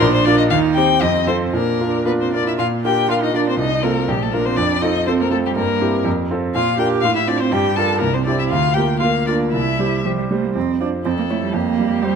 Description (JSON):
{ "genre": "quick classical-period movement for piano trio", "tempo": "121 BPM", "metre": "2/4", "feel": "straight", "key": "Bb major, F major from 6.5 s", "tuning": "A4 = 441 Hz", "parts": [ { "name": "rich violin", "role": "melody", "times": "0.0-12.2 s", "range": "G4 to A5", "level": "-21 LUFS", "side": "left 9 dB", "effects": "none" }, { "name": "warm cello", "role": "second line", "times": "0.0-12.2 s", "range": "F3 to A4", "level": "-22 LUFS", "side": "right 7 dB", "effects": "none" }, { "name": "clear concert grand piano", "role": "accompaniment", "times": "0.0-12.2 s", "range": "Bb1 to C#5", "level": "-19 LUFS", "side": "right 1 dB", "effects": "none" } ], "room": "moderate scoring stage reverb, RT60 1.8 s", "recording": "close, detailed microphones", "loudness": "-16 LUFS", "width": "side -6 dB against mid", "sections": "0.0-2.6 A section; 2.6-10.6 A section; 10.6-12.2 B section", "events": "none", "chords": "0.0 Bb; 0.5 Cm/Eb; 1.0 F7; 1.5 Bb; 3.6 F7/C; 4.1 Bb; 4.6 F; 5.6 C7/G; 6.1 F; 6.5 Bb; 7.0 F/A; 7.5 Gm7; 8.0 C; 8.5 Bb/D; 9.5 C; 10.6 F5; 11.1 Fmaj7#5; 11.6 C5/F" }